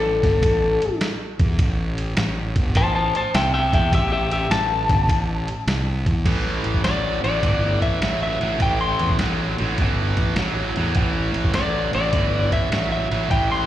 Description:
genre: blues rock power trio and southern rock.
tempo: 102 BPM.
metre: 4/4.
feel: swing 67% on 8ths.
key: A minor.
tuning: A4 = 441 Hz.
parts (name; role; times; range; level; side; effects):
lightly driven lead guitar; melody; 0.0-13.7 s; G4 to C6; -22 LUFS; left 2 dB; plate reverb, slapback echo, tape echo.
fuzz fingered electric bass; bass; 0.0-13.7 s; G1 to E2; -23 LUFS; equal; overdrive.
lo-fi sampler-style drum kit; drums; 0.2-13.6 s; crash cymbal, kick drum, ride cymbal, snare drum; -24 LUFS; equal; none.
overdriven electric guitar; riff; 6.3-13.7 s; A2 to F#3; -24 LUFS; right 2 dB; slapback echo.
room: light reverb.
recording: live gig heard through the venue's PA, recital hall reverb.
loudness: -18 LUFS.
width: side -12 dB against mid.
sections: 0.0-6.3 A section; 6.3-13.7 B section.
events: lead electric guitar solo 0.0-6.3.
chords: 0.0 N.C.; 6.3 A5.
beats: 0.43 1.01 | 1.60 2.18 2.76 3.34 | 3.93 4.51 5.09 5.68 | 6.26 6.85 7.43 8.02 | 8.61 9.20 9.78 10.37 | 10.96 11.54 12.13 12.72 | 13.31.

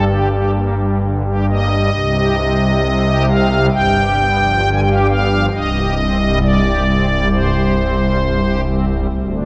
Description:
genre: classical, chorale-style piece for pipe organ.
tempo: 67 BPM.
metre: 4/4.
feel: rubato.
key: unclear.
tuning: A4 = 440 Hz.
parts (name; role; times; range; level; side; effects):
pipe organ, strings celeste; solo; 0.0-9.5 s; C1 to Ab5; -16 LUFS; equal; none.
room: wet church reverb, RT60 3.2 s.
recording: recorded in a church or concert hall.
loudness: -16 LUFS.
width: mono.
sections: 0.0-9.5 A section.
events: none.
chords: 0.0 Gm; 1.9 Cm; 3.7 G7; 5.5 Cm.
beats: 0.07 1.00 | 1.94 2.84 3.73 4.63 | 5.52 6.40 7.29 8.19 | 9.09.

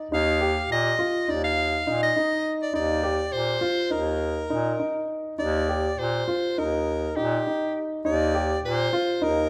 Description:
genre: contemporary instrumental, chamber music in an uneven meter.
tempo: 204 BPM (eighths).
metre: 9/8.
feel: straight.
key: Eb major.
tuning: A4 = 441 Hz.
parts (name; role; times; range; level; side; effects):
warm baby grand piano; arpeggios; 0.0-9.5 s; Eb4 to G4; -29 LUFS; equal; none.
bright soprano saxophone; melody; 0.1-9.5 s; G4 to F5; -29 LUFS; equal; none.
bright bass clarinet; bass; 0.1-9.5 s; Eb2 to Bb2; -31 LUFS; equal; none.
room: wet recital hall reverb, RT60 1.4 s.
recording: faint mains hum.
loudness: -25 LUFS.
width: mono.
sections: 0.0-9.5 A section.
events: none.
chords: 0.0 Ebmaj7.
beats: | 0.12 0.41 0.70 0.99 1.28 1.57 1.86 2.16 2.45 | 2.74 3.03 3.32 3.62 3.91 4.20 4.50 4.79 5.09 | 5.39 5.68 5.98 6.28 6.57 6.87 7.17 7.46 7.76 | 8.05 8.34 8.64 8.93 9.22.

